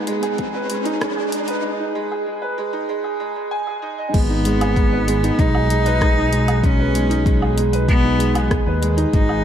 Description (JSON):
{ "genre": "piano and strings electronica", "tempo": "96 BPM", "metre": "4/4", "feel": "straight", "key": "unclear", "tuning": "A4 = 440 Hz", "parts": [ { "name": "bright chamber string section", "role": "sustained chords", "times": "0.0-1.6 s", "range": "B2 to G#4", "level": "-37 LUFS", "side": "equal", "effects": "none" }, { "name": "clear upright piano", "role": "riff", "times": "0.0-9.4 s", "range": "G#3 to G#5", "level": "-21 LUFS", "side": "right 2 dB", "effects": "digital delay" }, { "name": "riser", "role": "sound effects", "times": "0.0-1.6 s", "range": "none", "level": "-28 LUFS", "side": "left 2 dB", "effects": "none" }, { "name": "deep house drum kit", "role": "drums", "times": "0.1-9.4 s", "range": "crash cymbal, hi-hat, rim click, woodblock", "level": "-28 LUFS", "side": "equal", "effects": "none" }, { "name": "electronic kick drum", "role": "drums", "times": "0.4-9.3 s", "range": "none", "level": "-19 LUFS", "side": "left 1 dB", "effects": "none" }, { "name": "rich cello", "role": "melody", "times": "4.1-9.4 s", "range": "B3 to D#4", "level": "-22 LUFS", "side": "left 1 dB", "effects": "digital delay" }, { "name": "dark detuned saw bass", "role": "bass", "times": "4.1-9.4 s", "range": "G#1 to D#2", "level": "-20 LUFS", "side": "left 1 dB", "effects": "sidechain pumping" } ], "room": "light reverb", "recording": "dark, warm production, high-pass filter", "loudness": "-16 LUFS", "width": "side -9 dB against mid", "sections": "0.0-4.1 A section; 4.1-9.4 B section", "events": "build-up 0.0-4.1; riser 0.0-1.6; break 1.6-4.1; drop 4.1-9.4", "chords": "0.0 G#m" }